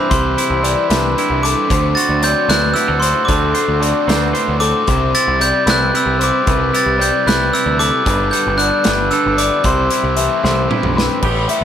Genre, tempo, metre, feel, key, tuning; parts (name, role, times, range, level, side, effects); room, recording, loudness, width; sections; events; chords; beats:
math rock and midwest emo; 76 BPM (dotted quarters); 6/8; straight; C lydian; A4 = 439 Hz
glockenspiel with hard plastic mallets; melody; 0.0-10.7 s; B5 to A6; -17 LUFS; equal; tape echo
twangy electric guitar; accompaniment; 0.0-11.6 s; G2 to C5; -22 LUFS; right 6 dB
electric guitar through a small old amp; arpeggios; 0.0-11.6 s; A4 to E5; -21 LUFS; left 7 dB; spring reverb, tape echo
cranked stack guitar; riff; 0.0-11.2 s; G2 to F#4; -24 LUFS; equal; overdrive
growling picked electric bass; bass; 0.1-11.6 s; G1 to D2; -20 LUFS; equal; overdrive
loose indie drum kit; drums; 0.1-11.6 s; crash cymbal, hi-hat, kick drum, snare drum, toms; -20 LUFS; equal
little or no reverb; -13 LUFS; side -9 dB against mid
0.0-11.2 A section
drum fill 10.4-11.2
0.0 Cmaj9; 1.7 D9; 4.9 Cmaj9; 8.1 G69; 9.6 C6
| 0.11 0.90 | 1.70 2.49 | 3.29 4.08 | 4.88 5.67 | 6.46 7.26 | 8.05 8.84 | 9.64 10.43 | 11.22